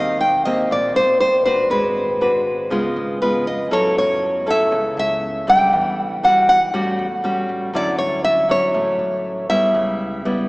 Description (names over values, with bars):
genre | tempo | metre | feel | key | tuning
bossa nova | 120 BPM | 4/4 | straight | D major | A4 = 438 Hz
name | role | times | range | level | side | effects
nylon-string guitar | melody | 0.0-10.5 s | B4 to G5 | -17 LUFS | equal | none
nylon-string guitar | accompaniment | 0.0-10.5 s | A2 to B4 | -22 LUFS | equal | none
upright bass | bass | 0.0-10.5 s | G#1 to F#2 | -37 LUFS | equal | none
room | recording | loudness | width
wet cathedral reverb, RT60 4.4 s | recorded in a church or concert hall, small speaker sound | -16 LUFS | side -24 dB against mid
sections
0.0-10.5 A section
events
none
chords
0.0 Eb6; 1.7 G#m7b5; 2.7 C#7; 3.7 F#m7; 5.7 Em9; 6.7 A6; 7.7 Dmaj9; 9.7 C#m7b5